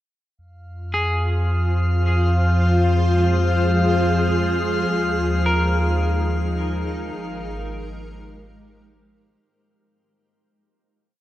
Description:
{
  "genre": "ambient",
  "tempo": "53 BPM",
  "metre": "4/4",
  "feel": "straight",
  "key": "F minor",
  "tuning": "A4 = 441 Hz",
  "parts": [
    { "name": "granular cloud pad", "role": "sustained chords", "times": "1.3-9.4 s", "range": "Ab3 to C5", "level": "-24 LUFS", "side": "equal", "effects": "built-in reverb" },
    { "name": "warm sub bass", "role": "bass", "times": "0.4-9.4 s", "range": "Ab1 to F2", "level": "-21 LUFS", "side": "equal", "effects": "none" },
    { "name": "bowed-like drone", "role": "drone", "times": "1.7-9.6 s", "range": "F3", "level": "-28 LUFS", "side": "left 2 dB", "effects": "built-in reverb" },
    { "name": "drifting glass-harmonics texture", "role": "texture", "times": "1.1-9.5 s", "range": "F5 to F6", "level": "-28 LUFS", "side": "left 2 dB", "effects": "chorus, built-in reverb" },
    { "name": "clean electric guitar", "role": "arpeggios", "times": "0.9-7.3 s", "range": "Ab4 to Bb4", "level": "-28 LUFS", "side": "equal", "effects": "diffuse ambient delay" }
  ],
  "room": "moderate huge ambient reverb, RT60 7.7 s",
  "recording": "dark, warm production",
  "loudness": "-18 LUFS",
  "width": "side -14 dB against mid",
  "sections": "0.4-9.4 A section",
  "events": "fade-in on synth drone 0.4-9.4; fade-out 4.9-9.4",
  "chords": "0.4 Fm; 4.9 Ebsus4; 7.2 Abmaj7"
}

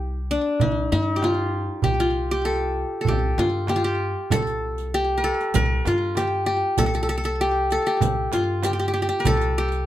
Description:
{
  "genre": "Arabic maqam ensemble",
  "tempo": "97 BPM",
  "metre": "4/4",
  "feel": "straight",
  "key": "unclear",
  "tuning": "A4 = 439 Hz",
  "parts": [
    { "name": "qanun", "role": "melody", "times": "0.0-9.9 s", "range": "D4 to Bb4+50c", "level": "-22 LUFS", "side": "left 1 dB", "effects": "slapback echo" },
    { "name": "upright bass", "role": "bass", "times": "0.0-9.9 s", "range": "C2 to G2", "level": "-27 LUFS", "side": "equal", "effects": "none" },
    { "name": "darbuka", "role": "percussion", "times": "0.3-9.8 s", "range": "none", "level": "-27 LUFS", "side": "right 7 dB", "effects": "none" },
    { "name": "frame drum", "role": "percussion", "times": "0.6-9.4 s", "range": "none", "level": "-29 LUFS", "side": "equal", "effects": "none" },
    { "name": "riq", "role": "percussion", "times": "4.3-9.8 s", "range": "none", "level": "-34 LUFS", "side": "right 9 dB", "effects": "none" }
  ],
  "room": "light reverb",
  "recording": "none",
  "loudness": "-20 LUFS",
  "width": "side -13 dB against mid",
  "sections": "0.0-9.9 A section",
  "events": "none",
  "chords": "none"
}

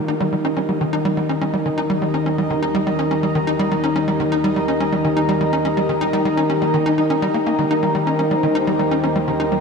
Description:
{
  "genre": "ambient, sequencer-driven space music",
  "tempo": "124 BPM",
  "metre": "4/4",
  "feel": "straight",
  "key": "unclear",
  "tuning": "A4 = 440 Hz",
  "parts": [
    { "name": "sweeping resonant pad", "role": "sustained chords", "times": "0.0-9.6 s", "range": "Eb3 to Bb5", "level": "-20 LUFS", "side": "left 1 dB", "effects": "chorus, shimmer reverb" },
    { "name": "Celtic harp", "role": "arpeggios", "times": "0.0-9.6 s", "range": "G3 to Bb4", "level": "-34 LUFS", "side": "left 2 dB", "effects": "none" },
    { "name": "analog drone", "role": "bass", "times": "0.7-9.6 s", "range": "Eb2", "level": "-42 LUFS", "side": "equal", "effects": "chorus" },
    { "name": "bubbling stepped-filter texture", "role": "texture", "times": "0.3-9.6 s", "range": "Eb4 to Eb5", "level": "-27 LUFS", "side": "equal", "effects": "chorus, built-in reverb, shimmer reverb" },
    { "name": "tight sequencer bass", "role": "riff", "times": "0.1-9.6 s", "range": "Eb3 to Eb4", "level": "-21 LUFS", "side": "equal", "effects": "lush chorus, tape echo, shimmer reverb" }
  ],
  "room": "wet cathedral reverb, RT60 5.6 s",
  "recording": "in a vast, echoing space, cassette tape",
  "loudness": "-17 LUFS",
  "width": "side -5 dB against mid",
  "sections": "0.0-9.6 A section",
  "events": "fade-in on synth drone 0.0-9.6",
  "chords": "0.0 Eb"
}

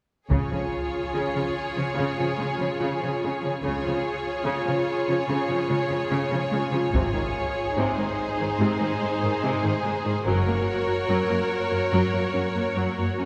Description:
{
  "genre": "cinematic, epic orchestral film score",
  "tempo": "72 BPM",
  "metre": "4/4",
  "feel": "straight",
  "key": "Db major",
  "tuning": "A4 = 440 Hz",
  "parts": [
    { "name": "clear symphonic violin section", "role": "second line", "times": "0.3-13.3 s", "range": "Ab4 to Db5", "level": "-30 LUFS", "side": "equal", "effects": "none" },
    { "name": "rich studio viola section", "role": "accompaniment", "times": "0.3-13.3 s", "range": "C3 to Gb4", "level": "-30 LUFS", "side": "equal", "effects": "none" },
    { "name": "rich symphonic cello section", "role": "bass", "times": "0.3-13.3 s", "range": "Gb2 to Db3", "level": "-32 LUFS", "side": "equal", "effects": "none" },
    { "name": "rich symphonic double bass section", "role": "bass", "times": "0.3-10.5 s", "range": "Gb1 to Db2", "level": "-35 LUFS", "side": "equal", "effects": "none" },
    { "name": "solo taiko drums", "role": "drums", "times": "0.3-1.9, 6.9-8.6 s", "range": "none", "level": "-32 LUFS", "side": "equal", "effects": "none" }
  ],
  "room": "wet church reverb, RT60 3.3 s",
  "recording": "recorded in a church or concert hall",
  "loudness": "-25 LUFS",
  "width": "mono",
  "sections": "0.3-13.3 A section",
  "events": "none",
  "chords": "0.3 Db; 6.9 Ab; 10.3 Gb"
}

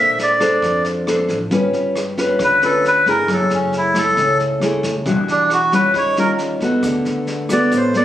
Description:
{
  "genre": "bossa nova",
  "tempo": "135 BPM",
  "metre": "4/4",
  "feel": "straight",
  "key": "unclear",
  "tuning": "A4 = 440 Hz",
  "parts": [
    { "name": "melodica", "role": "melody", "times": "0.0-8.0 s", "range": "C#4 to E5", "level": "-15 LUFS", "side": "equal", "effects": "plate reverb" },
    { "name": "nylon-string guitar", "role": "accompaniment", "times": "0.0-8.0 s", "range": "A2 to C5", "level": "-18 LUFS", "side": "left 1 dB", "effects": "none" },
    { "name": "upright bass", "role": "bass", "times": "0.0-8.0 s", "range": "E1 to F2", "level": "-30 LUFS", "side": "right 1 dB", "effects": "none" },
    { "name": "vintage brush drum kit", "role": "drums", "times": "0.2-8.0 s", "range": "kick drum, rim click, snare drum", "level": "-29 LUFS", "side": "right 1 dB", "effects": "none" },
    { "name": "egg shaker", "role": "percussion", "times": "6.8-8.0 s", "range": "none", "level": "-39 LUFS", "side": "right 2 dB", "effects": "none" }
  ],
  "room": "moderate studio reverb, RT60 0.7 s",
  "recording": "recorded on a phone in the room, studio reverb, compression",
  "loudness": "-14 LUFS",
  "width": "side -12 dB against mid",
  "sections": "0.0-8.0 A section",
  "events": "melodica solo 0.0-8.0",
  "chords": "0.0 Bbmaj9; 1.5 G7#11; 3.3 F#m9; 5.1 Em9; 5.9 D#9; 6.8 D6"
}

